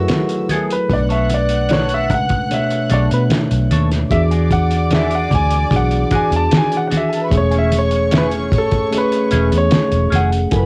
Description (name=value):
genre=lush 1970s-style soul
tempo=75 BPM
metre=4/4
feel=straight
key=unclear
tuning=A4 = 440 Hz
part: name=clear concert grand piano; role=melody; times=0.0-10.7 s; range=F#4 to A5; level=-22 LUFS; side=equal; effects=cassette tape
part: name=warm studio string section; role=second line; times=0.0-10.7 s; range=F#4 to F#6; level=-29 LUFS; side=equal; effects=none
part: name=mellow tine electric piano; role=accompaniment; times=0.0-10.7 s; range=B2 to G#5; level=-23 LUFS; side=equal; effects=none
part: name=vintage muted fingered electric bass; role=bass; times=0.0-10.7 s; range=E1 to B2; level=-20 LUFS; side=equal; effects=none
part: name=clean electric guitar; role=riff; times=0.1-10.6 s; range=B3 to C#5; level=-28 LUFS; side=equal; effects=wah
part: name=cloth-damped thuddy drum kit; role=drums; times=0.1-10.7 s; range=hi-hat, kick drum, snare drum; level=-23 LUFS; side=equal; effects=cassette tape
part: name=congas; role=percussion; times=0.1-10.7 s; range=none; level=-26 LUFS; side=equal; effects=none
room=light reverb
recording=home recording on cassette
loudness=-16 LUFS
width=mono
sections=0.0-10.7 A section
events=grand piano solo 0.0-10.7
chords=0.0 F#m11; 0.9 Bm9; 4.1 E9; 7.3 Amaj7/E